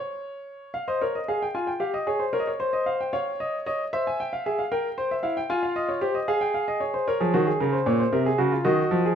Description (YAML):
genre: classical, baroque-style 3-part fugue for grand piano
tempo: 76 BPM (dotted quarters)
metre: 12/8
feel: straight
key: unclear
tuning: A4 = 441 Hz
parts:
  - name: clear baby grand piano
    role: solo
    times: 0.0-9.2 s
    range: Bb2 to Ab5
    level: -23 LUFS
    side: equal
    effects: none
room: moderate stone room reverb, RT60 1.2 s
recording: dark, warm production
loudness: -23 LUFS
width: side -8 dB against mid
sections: 0.0-9.2 A section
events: none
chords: 0.0 N.C.; 0.8 Fm; 2.3 G7(b5, no3) (rootless); 3.9 C; 5.5 Fm; 7.1 Bbm; 8.6 Cdim/Eb (rootless)